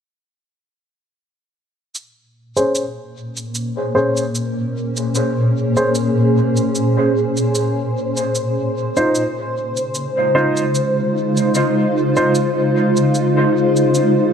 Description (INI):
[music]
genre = ambient dub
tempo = 75 BPM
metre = 4/4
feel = swing 55% on 16ths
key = Bb minor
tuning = A4 = 439 Hz
[part]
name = granular cloud pad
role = sustained chords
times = 3.3-14.3 s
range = Bb2 to C5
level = -16 LUFS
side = equal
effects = built-in reverb
[part]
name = shaker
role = drums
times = 1.9-14.1 s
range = none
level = -27 LUFS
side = right 2 dB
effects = dub echo
[part]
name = warm upright piano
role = stabs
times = 2.6-12.3 s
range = Db4 to C5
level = -20 LUFS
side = equal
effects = low-pass filter, dub echo
[sound]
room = wet echo chamber reverb, RT60 2.5 s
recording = none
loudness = -15 LUFS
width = side -7 dB against mid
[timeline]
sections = 1.9-14.3 A section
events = filter sweep on ambient pad 1.9-14.3; filter sweep on upright piano 1.9-14.3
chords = 1.9 Bbm7; 8.3 Dbmaj7